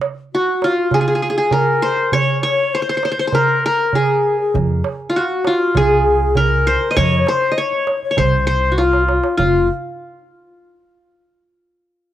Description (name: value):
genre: Turkish makam ensemble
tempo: 99 BPM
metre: 4/4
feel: straight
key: F makam kurdi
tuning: A4 = 441 Hz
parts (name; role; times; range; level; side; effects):
- darbuka; percussion; 0.0-9.7 s; none; -22 LUFS; right 5 dB; none
- qanun; melody; 0.3-9.7 s; F4 to Eb5; -16 LUFS; equal; cassette tape, plate reverb
- breathy low ney; second line; 0.3-9.7 s; F4 to D5; -21 LUFS; left 7 dB; cassette tape, plate reverb
- upright bass; bass; 4.5-9.7 s; F1 to F2; -19 LUFS; equal; none
room: moderate studio reverb, RT60 0.5 s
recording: home recording on cassette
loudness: -14 LUFS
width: side -12 dB against mid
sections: 0.0-9.4 A section; 9.4-11.8 B section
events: drum fill 8.8-9.4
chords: none